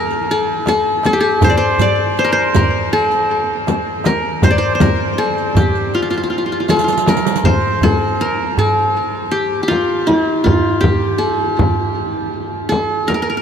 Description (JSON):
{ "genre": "Arabic maqam ensemble", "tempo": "80 BPM", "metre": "4/4", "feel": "straight", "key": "unclear", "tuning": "A4 = 441 Hz", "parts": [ { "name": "qanun", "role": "melody", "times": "0.0-13.4 s", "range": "E4-50c to D5", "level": "-15 LUFS", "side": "left 1 dB", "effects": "ping-pong delay" }, { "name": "riq", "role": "percussion", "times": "0.1-7.4 s", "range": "none", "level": "-26 LUFS", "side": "right 10 dB", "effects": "none" }, { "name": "darbuka", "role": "percussion", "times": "0.7-13.3 s", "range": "none", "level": "-22 LUFS", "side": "right 3 dB", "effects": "none" }, { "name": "frame drum", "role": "percussion", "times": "0.7-13.3 s", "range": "none", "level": "-20 LUFS", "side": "left 2 dB", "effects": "none" } ], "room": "wet huge ambient reverb, RT60 8.1 s", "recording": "dreamy mix soaked in reverb", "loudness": "-13 LUFS", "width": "side -7 dB against mid", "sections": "0.0-7.4 A section; 7.4-13.4 B section", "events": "drum fill 6.7-7.4", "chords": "none", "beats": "0.67 | 1.43 2.18 2.93 3.68 | 4.44 5.19 5.94 6.70 | 7.45 8.20 8.96 9.71 | 10.46 11.22 11.97 12.72" }